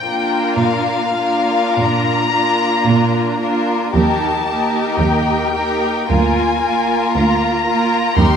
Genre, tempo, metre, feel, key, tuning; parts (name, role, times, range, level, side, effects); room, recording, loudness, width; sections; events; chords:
classical, slow romantic movement for string orchestra; 48-60 BPM; 4/4; rubato; Bb major; A4 = 440 Hz
rich chamber violin section; melody; 0.0-8.4 s; F5 to C6; -20 LUFS; left 5 dB
rich chamber violin section; second line; 0.0-8.4 s; F4 to Bb4; -19 LUFS; left 2 dB
rich chamber viola section; accompaniment; 0.0-8.4 s; Bb3 to F4; -21 LUFS; right 3 dB
warm studio cello section; bass; 0.0-8.4 s; D2 to Bb2; -18 LUFS; right 3 dB
wet recital hall reverb, RT60 1.6 s; minimal, uncompressed stereo recording; -14 LUFS; side -7 dB against mid
0.0-8.4 A section
0.0 Bb; 3.9 Eb; 6.1 Bb7/D